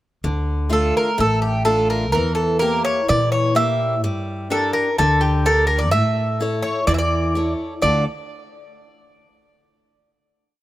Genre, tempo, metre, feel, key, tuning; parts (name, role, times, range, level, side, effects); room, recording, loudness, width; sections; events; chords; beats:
greek folk, Greek bouzouki band; 127 BPM; 4/4; straight; D harmonic minor; A4 = 440 Hz
picked steel-string acoustic guitar; accompaniment; 0.2-8.0 s; D3 to C#5; -24 LUFS; left 2 dB
upright bass; bass; 0.2-8.0 s; A1 to Bb2; -22 LUFS; equal
Greek bouzouki; melody; 0.7-8.0 s; G4 to E5; -19 LUFS; right 1 dB
light reverb; -17 LUFS; side -15 dB against mid
0.2-7.8 A section; 7.8-9.7 final chord
0.2 Dm; 2.1 Edim; 4.0 Gm; 5.9 A; 7.8 Dm
| 0.24 0.72 1.19 1.67 | 2.14 2.62 3.09 3.56 | 4.04 4.51 4.99 5.46 | 5.93 6.40 6.87 7.34 | 7.81